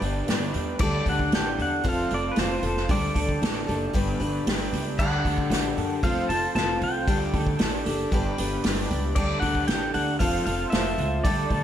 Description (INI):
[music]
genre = folk rock and heartland rock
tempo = 115 BPM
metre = 4/4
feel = straight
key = unclear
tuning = A4 = 440 Hz
[part]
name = picked steel-string acoustic guitar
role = accompaniment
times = 0.0-11.6 s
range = D3 to B4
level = -30 LUFS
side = left 3 dB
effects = none
[part]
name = accordion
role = sustained chords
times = 0.0-11.6 s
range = F4 to D6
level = -39 LUFS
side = right 3 dB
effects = none
[part]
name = electric guitar through a small old amp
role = riff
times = 0.0-11.6 s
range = G2 to A4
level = -31 LUFS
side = right 3 dB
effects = ensemble chorus, slapback echo
[part]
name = upright bass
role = bass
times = 0.0-11.6 s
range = F1 to F#2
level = -30 LUFS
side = equal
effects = none
[part]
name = unplugged drum kit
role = drums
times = 0.0-11.6 s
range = crash cymbal, hi-hat, kick drum, snare drum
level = -27 LUFS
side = equal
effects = none
[part]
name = pedal steel guitar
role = melody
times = 0.8-11.6 s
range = B4 to A5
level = -29 LUFS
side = equal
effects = slapback echo
[sound]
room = moderate lush hall reverb, RT60 1.8 s, small room ambience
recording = big arena sound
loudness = -22 LUFS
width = side -10 dB against mid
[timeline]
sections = 0.0-11.6 A section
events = none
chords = 0.0 G; 0.8 Dsus4; 1.9 F; 2.9 Dsus4; 3.9 G; 5.0 Dsus4; 6.0 F; 7.1 Dsus4; 8.1 G; 9.2 Dsus4; 10.2 F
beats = 0.29 | 0.81 1.33 1.85 2.38 | 2.90 3.42 3.94 4.46 | 4.99 5.51 6.03 6.55 | 7.07 7.59 8.12 8.64 | 9.16 9.68 10.20 10.72 | 11.24